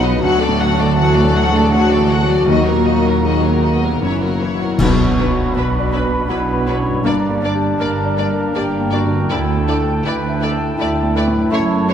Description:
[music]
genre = cinematic, emotional film score for orchestra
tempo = 80 BPM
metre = 3/4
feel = rubato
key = B minor from 4.8 s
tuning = A4 = 441 Hz
[part]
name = rich studio violin section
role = melody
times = 0.0-11.9 s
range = Bb4 to F#5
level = -25 LUFS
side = left 4 dB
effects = none
[part]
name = clear studio violin section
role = second line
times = 0.0-11.9 s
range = D4 to A4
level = -30 LUFS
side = left 2 dB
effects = none
[part]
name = mellow flute section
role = second line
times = 0.0-11.9 s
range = G5 to B5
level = -26 LUFS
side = left 1 dB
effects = none
[part]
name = warm clarinet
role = second line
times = 0.0-11.9 s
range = D4 to G4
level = -26 LUFS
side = left 1 dB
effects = none
[part]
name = felt-muted upright piano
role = accompaniment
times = 0.0-11.9 s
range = B1 to E5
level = -22 LUFS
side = left 1 dB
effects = none
[part]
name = rich studio viola section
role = accompaniment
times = 0.0-11.9 s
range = Eb3 to B3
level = -27 LUFS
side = right 1 dB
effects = none
[part]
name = mellow French horn section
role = sustained chords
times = 0.0-11.9 s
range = A3 to F#4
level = -23 LUFS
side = left 2 dB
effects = none
[part]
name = concert harp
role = arpeggios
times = 0.0-11.9 s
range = Gb2 to Bb5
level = -26 LUFS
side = left 8 dB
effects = none
[part]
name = dark studio cello section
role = bass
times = 0.0-11.9 s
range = D2 to B2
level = -21 LUFS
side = right 3 dB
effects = none
[part]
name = dark studio double bass section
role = bass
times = 0.0-11.9 s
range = Gb1 to Eb2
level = -21 LUFS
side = right 3 dB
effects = none
[part]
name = timpani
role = percussion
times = 2.5-5.9 s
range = B2 to Eb3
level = -22 LUFS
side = left 3 dB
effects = none
[part]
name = mellow cor anglais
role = second line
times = 4.8-11.9 s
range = A4 to D5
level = -26 LUFS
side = right 2 dB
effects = none
[part]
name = clash cymbals and concert bass drum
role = percussion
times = 4.8-6.2 s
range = none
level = -23 LUFS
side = equal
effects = none
[sound]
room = moderate scoring stage reverb, RT60 1.8 s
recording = none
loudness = -14 LUFS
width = side -8 dB against mid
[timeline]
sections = 0.0-4.8 A section; 4.8-11.9 B section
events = band accent 4.8-5.5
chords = 0.2 D; 2.5 Ebm; 4.0 Gb7; 4.8 Bm; 7.0 Gm; 9.3 Dsus2

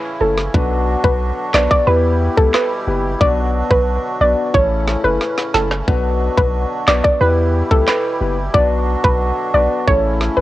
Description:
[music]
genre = dancehall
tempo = 90 BPM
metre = 4/4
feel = straight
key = B minor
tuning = A4 = 441 Hz
[part]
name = accordion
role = sustained chords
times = 0.0-10.4 s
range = A2 to G4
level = -24 LUFS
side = right 2 dB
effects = light tremolo tuning, sidechain pumping
[part]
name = soft round pluck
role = melody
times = 0.2-10.4 s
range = A4 to D5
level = -17 LUFS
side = equal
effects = chorus, cassette tape
[part]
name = dark baby grand piano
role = accompaniment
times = 0.2-10.4 s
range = A3 to B4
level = -23 LUFS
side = left 5 dB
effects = none
[part]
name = punchy sub bass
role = bass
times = 0.2-10.4 s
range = F#1 to E2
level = -19 LUFS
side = equal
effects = none
[part]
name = island pop drum kit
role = drums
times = 0.4-10.4 s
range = handclaps, kick drum, snare drum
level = -18 LUFS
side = equal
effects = cassette tape
[sound]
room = little or no reverb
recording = home recording on cassette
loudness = -14 LUFS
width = side -15 dB against mid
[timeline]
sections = 0.0-10.4 A section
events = drum fill 5.2-5.9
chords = 0.0 A; 0.5 Bm; 1.9 Em; 3.2 Bm; 4.5 A; 5.9 Bm; 7.2 Em; 8.5 Bm; 9.9 A

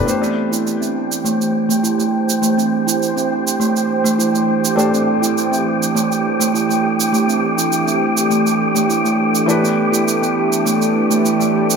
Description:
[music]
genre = organic downtempo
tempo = 102 BPM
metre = 4/4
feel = straight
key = A minor pentatonic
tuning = A4 = 440 Hz
[part]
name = felt-muted upright piano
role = accompaniment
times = 0.0-11.8 s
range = E3 to C5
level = -24 LUFS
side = left 4 dB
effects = tape echo
[part]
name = warm analog pad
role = sustained chords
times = 0.1-11.8 s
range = E3 to C5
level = -21 LUFS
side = right 1 dB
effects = chorus, tremolo
[part]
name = steel tongue drum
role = arpeggios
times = 0.1-11.5 s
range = A3 to E4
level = -18 LUFS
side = right 3 dB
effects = low-pass filter, tape echo
[part]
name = shaker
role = drums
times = 0.1-11.8 s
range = none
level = -23 LUFS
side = right 7 dB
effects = none
[part]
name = wind-like tuned noise texture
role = texture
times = 0.5-11.8 s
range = G4 to G5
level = -21 LUFS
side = left 1 dB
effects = built-in reverb
[sound]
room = moderate lush hall reverb, RT60 1.7 s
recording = none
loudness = -14 LUFS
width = side -5 dB against mid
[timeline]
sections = 0.1-11.8 A section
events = none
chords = 0.1 Am7; 9.5 E7sus4

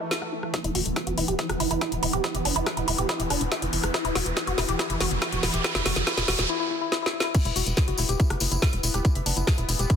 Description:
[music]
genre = psychedelic trance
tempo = 141 BPM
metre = 4/4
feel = straight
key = E minor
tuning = A4 = 442 Hz
[part]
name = bubbling stepped-filter texture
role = sustained chords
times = 0.0-10.0 s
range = E3 to B3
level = -33 LUFS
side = equal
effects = chorus, built-in reverb, sidechain pumping
[part]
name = woody wave-folded pluck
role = riff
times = 0.0-10.0 s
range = D4 to F#5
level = -30 LUFS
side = moving between left 11 dB and right 7 dB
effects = chorus, auto-pan, sidechain pumping, digital delay
[part]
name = garage drum kit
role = drums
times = 0.1-10.0 s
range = crash cymbal, hi-hat, rim click, snare drum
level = -28 LUFS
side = left 1 dB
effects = soft clipping on snare
[part]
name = electronic kick drum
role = drums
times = 0.5-10.0 s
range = none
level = -23 LUFS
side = equal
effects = high-pass filter on kick
[part]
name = riser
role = sound effects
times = 2.8-6.5 s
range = none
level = -32 LUFS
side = right 3 dB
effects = none
[part]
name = tight sequencer bass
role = bass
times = 0.6-9.9 s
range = E1 to F#1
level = -29 LUFS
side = equal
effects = none
[part]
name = tambourine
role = percussion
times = 7.3-10.0 s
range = none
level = -33 LUFS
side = left 1 dB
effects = none
[sound]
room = light reverb, digital ambience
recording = dense, heavily limited modern master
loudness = -23 LUFS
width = side -8 dB against mid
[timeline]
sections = 0.5-7.3 A section; 7.3-10.0 B section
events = build-up 0.5-7.3; drum fill 0.5-6.5, 6.9-7.3; riser 2.8-6.5; break 6.5-7.3; drop 7.3-10.0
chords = 0.0 E5

